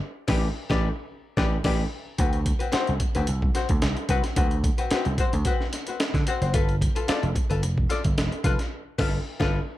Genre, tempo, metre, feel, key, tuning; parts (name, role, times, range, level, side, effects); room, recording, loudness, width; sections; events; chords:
funk; 110 BPM; 4/4; straight; D mixolydian; A4 = 440 Hz
archtop guitar, miked and amplified; accompaniment; 0.3-9.6 s; C4 to D5; -29 LUFS; left 5 dB; wah, plate reverb
vintage slap bass; bass; 0.3-9.6 s; F1 to D3; -26 LUFS; right 1 dB
breakbeat sampler-style drum kit; drums; 0.3-9.6 s; crash cymbal, hi-hat, kick drum, snare drum; -25 LUFS; right 1 dB
light reverb; -22 LUFS; side -15 dB against mid
0.0-2.2 A section; 2.2-9.8 B section
band accent 0.0-2.2, 8.7-9.8
0.0 A9sus4; 2.2 D6; 6.5 G9